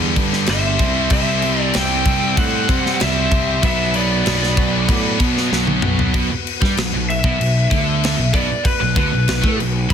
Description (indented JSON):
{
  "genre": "hard rock",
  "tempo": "96 BPM",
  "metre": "4/4",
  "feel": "straight",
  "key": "B phrygian",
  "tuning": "A4 = 438 Hz",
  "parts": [
    { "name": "overdriven tonewheel organ", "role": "sustained chords", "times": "0.0-9.9 s", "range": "G3 to D5", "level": "-34 LUFS", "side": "right 1 dB", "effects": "none" },
    { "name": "high-gain distorted guitar", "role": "riff", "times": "0.0-9.9 s", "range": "G2 to E4", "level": "-26 LUFS", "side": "right 3 dB", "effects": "distortion" },
    { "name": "sludgy distorted guitar", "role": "riff", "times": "0.0-9.8 s", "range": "G2 to C4", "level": "-24 LUFS", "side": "right 9 dB", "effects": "overdrive" },
    { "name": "tight distorted guitar", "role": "riff", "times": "0.0-9.9 s", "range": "G2 to C4", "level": "-24 LUFS", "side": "left 12 dB", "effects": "distortion" },
    { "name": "fuzz picked electric bass", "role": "bass", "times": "0.0-9.9 s", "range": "G1 to C3", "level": "-22 LUFS", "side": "equal", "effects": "overdrive" },
    { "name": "tight metal drum kit", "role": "drums", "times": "0.2-9.9 s", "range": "crash cymbal, kick drum, snare drum, toms", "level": "-20 LUFS", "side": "left 1 dB", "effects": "soft clipping on kick" },
    { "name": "lead guitar through a small cranked amp", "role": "melody", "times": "0.5-9.6 s", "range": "B4 to G5", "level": "-23 LUFS", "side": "equal", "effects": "overdrive, digital delay" },
    { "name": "octave-fuzz lead guitar", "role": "second line", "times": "0.5-5.2 s", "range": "B4 to E5", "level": "-30 LUFS", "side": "right 5 dB", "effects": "distortion" }
  ],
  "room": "small room ambience",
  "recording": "dense, heavily limited modern master",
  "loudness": "-15 LUFS",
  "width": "side -8 dB against mid",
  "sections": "0.0-6.1 A section; 6.1-9.9 B section",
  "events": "drum fill 5.5-6.1; lead electric guitar solo 6.1-9.9",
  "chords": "0.0 G; 0.8 C; 3.6 Bm",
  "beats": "0.49 | 1.12 1.75 2.38 3.01 | 3.63 4.26 4.89 5.52 | 6.15 6.77 7.40 8.03 | 8.65 9.28 9.91"
}